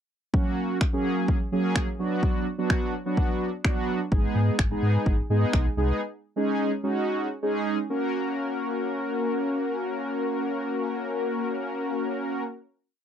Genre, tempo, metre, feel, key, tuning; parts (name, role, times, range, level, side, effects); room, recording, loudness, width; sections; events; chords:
dance-pop; 127 BPM; 4/4; straight; F# major; A4 = 440 Hz
mellow synth brass; accompaniment; 0.3-12.4 s; F#3 to A#4; -26 LUFS; equal; chorus, sidechain pumping
house drum kit; drums; 0.3-5.6 s; finger snaps, kick drum; -24 LUFS; equal; overdrive
sub bass with octave; bass; 4.1-5.9 s; G#1 to G#2; -24 LUFS; equal; sidechain pumping
little or no reverb; dry, close 1970s-style studio recording; -24 LUFS; side -8 dB against mid
0.3-7.9 verse; 7.9-11.7 final chord
0.3 F#; 2.0 Bm; 4.1 G#m; 6.0 C#sus2; 7.9 F#